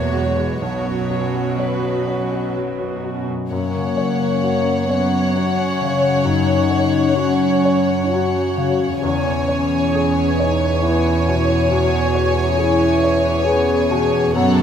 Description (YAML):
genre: cinematic, emotional film score for orchestra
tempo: 61-69 BPM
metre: 3/4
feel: rubato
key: unclear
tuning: A4 = 441 Hz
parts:
  - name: warm symphonic violin section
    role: melody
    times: 0.0-14.6 s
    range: B4 to A5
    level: -27 LUFS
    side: left 3 dB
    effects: none
  - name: clear baby grand piano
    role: accompaniment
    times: 0.0-14.6 s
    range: B1 to C#5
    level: -24 LUFS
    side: left 1 dB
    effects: none
  - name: dark symphonic viola section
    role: accompaniment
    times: 0.0-14.6 s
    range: F#3 to C#5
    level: -27 LUFS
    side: right 1 dB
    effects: none
  - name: concert harp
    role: arpeggios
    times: 0.0-14.6 s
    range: E2 to C#5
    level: -25 LUFS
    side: left 8 dB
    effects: none
  - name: rich symphonic cello section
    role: bass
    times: 0.0-14.6 s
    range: E2 to B2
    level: -22 LUFS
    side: right 4 dB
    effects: none
  - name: mellow French horn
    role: melody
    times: 3.5-14.6 s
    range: A#3 to G#4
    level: -24 LUFS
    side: equal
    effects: none
  - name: warm symphonic violin section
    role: second line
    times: 3.5-14.6 s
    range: A4 to C#5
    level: -24 LUFS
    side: left 2 dB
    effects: none
  - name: mellow French horn section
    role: sustained chords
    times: 3.5-14.6 s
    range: A#3 to G#4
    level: -22 LUFS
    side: left 2 dB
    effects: none
room: moderate scoring stage reverb, RT60 1.6 s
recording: none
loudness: -16 LUFS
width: side -8 dB against mid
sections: 0.0-3.5 A section; 3.5-14.6 B section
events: none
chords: 0.0 Eadd9; 0.6 Bsus2; 3.5 F#; 9.0 E6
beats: | 0.61 1.59 2.56 | 3.52 4.43 5.36 | 6.26 7.17 8.13 | 9.04 9.94 10.83 | 11.71 12.59 13.47 | 14.34